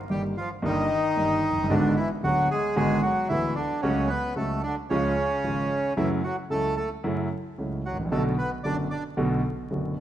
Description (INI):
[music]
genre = tango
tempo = 112 BPM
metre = 4/4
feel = rubato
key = F# minor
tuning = A4 = 440 Hz
[part]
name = bandoneon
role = melody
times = 0.1-9.0 s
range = C#3 to D5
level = -26 LUFS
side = equal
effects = none
[part]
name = dark concert grand piano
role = accompaniment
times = 0.1-9.9 s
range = D1 to G4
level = -26 LUFS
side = right 1 dB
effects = none
[sound]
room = moderate scoring stage reverb, RT60 2.1 s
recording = minimal, uncompressed stereo recording, vinyl crackle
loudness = -23 LUFS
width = side -11 dB against mid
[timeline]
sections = 0.0-10.0 A section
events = none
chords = 0.0 D#/G; 1.7 G#m7b5; 3.8 F#m/C#; 4.9 C#; 6.0 F#m7; 8.1 Bm7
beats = 0.10 0.63 1.17 | 1.70 2.23 2.77 3.30 | 3.83 4.37 4.90 5.44 | 5.97 6.51 7.04 7.58 | 8.11 8.64 9.17 9.70